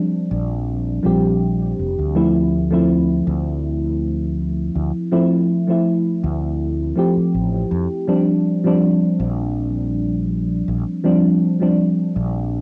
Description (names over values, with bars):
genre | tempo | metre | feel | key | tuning
vaporwave | 81 BPM | 4/4 | straight | unclear | A4 = 440 Hz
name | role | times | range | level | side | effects
mellow FM electric piano | accompaniment | 0.0-12.6 s | F3 to G4 | -20 LUFS | equal | subtle chorus, analog delay
fretless electric bass | bass | 0.3-12.6 s | F1 to F2 | -25 LUFS | equal | none
room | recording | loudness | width
moderate studio reverb, RT60 0.6 s | home recording on cassette | -19 LUFS | mono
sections
0.0-8.1 A section; 8.1-12.6 B section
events
none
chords
0.0 Bb6; 2.2 Dm9; 8.1 Bb6